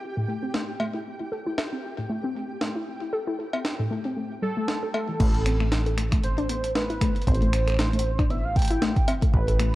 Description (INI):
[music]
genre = IDM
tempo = 116 BPM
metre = 4/4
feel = swing 56% on 16ths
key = A minor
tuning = A4 = 440 Hz
[part]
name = flickering grainy texture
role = texture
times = 0.0-5.2 s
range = G4 to G5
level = -40 LUFS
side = equal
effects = built-in reverb
[part]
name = warbly dusty pluck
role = arpeggios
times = 0.2-9.7 s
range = A2 to A4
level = -29 LUFS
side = left 2 dB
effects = chorus, ping-pong delay
[part]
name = jungle sampler-style drum kit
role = drums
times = 0.5-9.7 s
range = cowbell, crash cymbal, finger snaps, hi-hat, snare drum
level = -31 LUFS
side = equal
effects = none
[part]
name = warm velvety synth lead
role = melody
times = 4.4-9.8 s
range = A4 to G5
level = -30 LUFS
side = right 2 dB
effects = chorus, cassette tape, ping-pong delay
[part]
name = deep acid bass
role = bass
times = 5.2-9.8 s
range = A1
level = -26 LUFS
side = equal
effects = none
[part]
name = electronic kick drum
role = drums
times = 5.2-9.5 s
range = none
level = -23 LUFS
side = equal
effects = none
[sound]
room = light reverb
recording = worn, warbling old tape, cassette tape, warbly pitch drift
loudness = -23 LUFS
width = side -17 dB against mid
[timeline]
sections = 0.0-5.2 A section; 5.2-9.8 B section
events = filter sweep on synth arpeggio sound 0.0-5.2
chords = 0.0 A7(no3); 5.2 Am9